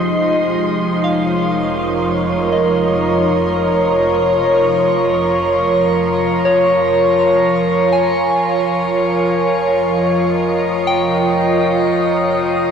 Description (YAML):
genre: ambient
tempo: 61 BPM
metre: 4/4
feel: straight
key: unclear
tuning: A4 = 440 Hz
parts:
  - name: evolving wavetable pad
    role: sustained chords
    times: 0.0-12.7 s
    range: F3 to Eb5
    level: -14 LUFS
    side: equal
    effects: chorus, built-in reverb
  - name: soft synth bell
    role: arpeggios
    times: 0.0-12.7 s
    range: G4 to Ab5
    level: -22 LUFS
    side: left 1 dB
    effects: chorus, phaser, diffuse ambient delay
  - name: dark chamber double bass section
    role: bass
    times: 0.0-12.7 s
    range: F1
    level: -31 LUFS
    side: equal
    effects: none
  - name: wind-like tuned noise texture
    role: texture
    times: 0.0-12.7 s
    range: C6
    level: -29 LUFS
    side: left 1 dB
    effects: built-in reverb
room: wet shimmer reverb, RT60 8.6 s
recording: none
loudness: -13 LUFS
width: side -7 dB against mid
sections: 0.0-12.7 A section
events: fade-out on double bass section 0.0-12.7; fade-out on synth texture 0.0-12.7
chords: 0.0 Ab/F; 0.5 Bbm/F; 8.4 Dbadd9/F